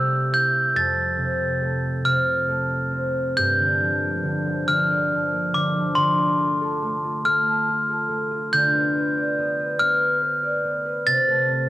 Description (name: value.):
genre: children's music, lullaby.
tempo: 47 BPM (dotted quarters).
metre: 6/8.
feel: rubato.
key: unclear.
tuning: A4 = 441 Hz.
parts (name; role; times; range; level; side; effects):
glockenspiel with soft plastic mallets; melody; 0.0-11.7 s; C6 to A6; -21 LUFS; equal; cassette tape.
concert harp; accompaniment; 0.0-11.7 s; F2 to B5; -24 LUFS; equal; cassette tape.
room: light reverb.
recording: home recording on cassette.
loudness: -19 LUFS.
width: side -15 dB against mid.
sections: 0.0-3.4 A section; 3.4-11.7 B section.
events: none.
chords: 0.0 C; 0.7 F; 3.4 Gm7; 6.0 Dm7; 8.5 G7/D; 11.1 Am/C.